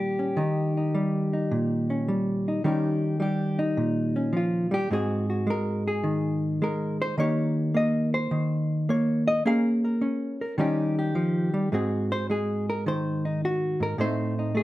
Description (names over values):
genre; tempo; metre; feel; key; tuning
solo jazz; 106 BPM; 4/4; swing 67% on 8ths; Eb mixolydian; A4 = 438 Hz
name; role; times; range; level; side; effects
hollow-body jazz guitar; solo; 0.0-14.6 s; Ab2 to F5; -24 LUFS; equal; none
room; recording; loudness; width
light reverb; minimal, uncompressed stereo recording; -24 LUFS; side -16 dB against mid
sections
0.0-2.6 A section; 2.6-14.6 B section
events
hollow-body jazz guitar solo 2.6-14.6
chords
0.0 Eb7; 4.9 Ab7; 7.2 Eb7; 9.4 Bbm7; 10.6 Eb7; 11.7 Ab7; 14.0 Adim